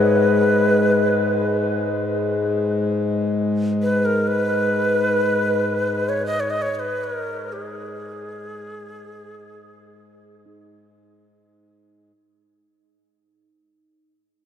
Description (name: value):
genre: world meditative, free-time meditation music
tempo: free time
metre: none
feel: none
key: G# minor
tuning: A4 = 440 Hz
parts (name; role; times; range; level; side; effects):
- mellow Native American-style cedar flute; melody; 0.0-10.7 s; G#4 to D#5; -22 LUFS; equal; tape echo
- pedal harmonium; drone; 0.0-12.1 s; G#2; -22 LUFS; left 1 dB; none
- bronze singing bowl; texture; 0.0-12.5 s; D#4 to G#4; -27 LUFS; left 2 dB; none
room: wet huge ambient reverb, RT60 7.6 s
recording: in a vast, echoing space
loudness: -18 LUFS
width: side -9 dB against mid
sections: 0.0-12.0 A section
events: fade-out 0.0-12.0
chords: none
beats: free time